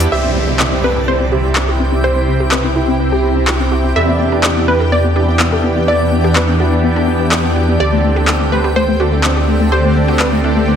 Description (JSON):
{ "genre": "progressive house", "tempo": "125 BPM", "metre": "4/4", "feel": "straight", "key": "unclear", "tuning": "A4 = 440 Hz", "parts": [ { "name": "shimmering ambient pad", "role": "sustained chords", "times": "0.0-10.8 s", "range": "C3 to G4", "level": "-19 LUFS", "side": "equal", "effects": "chorus, built-in reverb, phaser" }, { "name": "analog pluck", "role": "arpeggios", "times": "0.0-10.8 s", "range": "A3 to A4", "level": "-20 LUFS", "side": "left 4 dB", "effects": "chorus, digital delay" }, { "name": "soft supersaw", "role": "stabs", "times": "0.0-10.8 s", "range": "C3 to D5", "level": "-20 LUFS", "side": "right 2 dB", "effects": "low-pass filter, digital delay" }, { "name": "dark detuned saw bass", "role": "bass", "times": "0.0-10.8 s", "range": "C2 to E2", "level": "-17 LUFS", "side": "equal", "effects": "none" }, { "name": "deep house drum kit", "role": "drums", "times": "0.0-10.3 s", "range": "handclaps, hi-hat, shaker", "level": "-18 LUFS", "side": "equal", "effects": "overdrive" }, { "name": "backwards swelling texture", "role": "texture", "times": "0.1-10.8 s", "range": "D5 to G6", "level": "-28 LUFS", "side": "left 1 dB", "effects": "built-in reverb" }, { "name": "wide unison pluck", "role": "melody", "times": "0.1-10.8 s", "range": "B4 to E5", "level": "-20 LUFS", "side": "right 1 dB", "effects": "vintage 12-bit sampler grit, tape echo" }, { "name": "downlifter", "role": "sound effects", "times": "0.1-4.0 s", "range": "none", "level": "-24 LUFS", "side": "right 3 dB", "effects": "none" } ], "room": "moderate lush hall reverb, RT60 1.6 s, digital ambience", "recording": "dense, heavily limited modern master", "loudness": "-11 LUFS", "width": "side -8 dB against mid", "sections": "0.1-10.8 A section", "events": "filter sweep on synth arpeggio sound 0.1-10.8", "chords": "0.1 C; 4.0 Em7; 7.8 D7sus4" }